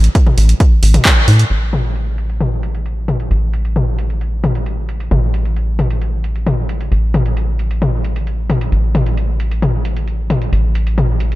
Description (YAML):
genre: driving peak-time techno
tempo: 133 BPM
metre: 4/4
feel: straight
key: unclear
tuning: A4 = 440 Hz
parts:
  - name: tight sequencer bass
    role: bass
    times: 0.0-11.4 s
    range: A1 to A2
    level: -15 LUFS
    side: equal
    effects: sidechain pumping
  - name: punchy analog drum machine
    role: drums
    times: 0.0-11.4 s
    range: crash cymbal, handclaps, hi-hat, toms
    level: -18 LUFS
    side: left 1 dB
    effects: overdrive, low-pass filter on hats, low-pass filter on toms, low-pass filter on snare, low-pass filter on cymbals, low-pass filter on room
  - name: electronic kick drum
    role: drums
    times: 0.1-1.1 s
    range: none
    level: -11 LUFS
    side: equal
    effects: none
room: light reverb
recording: none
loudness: -13 LUFS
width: side -17 dB against mid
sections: 0.0-1.5 A section; 1.5-11.4 B section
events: none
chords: none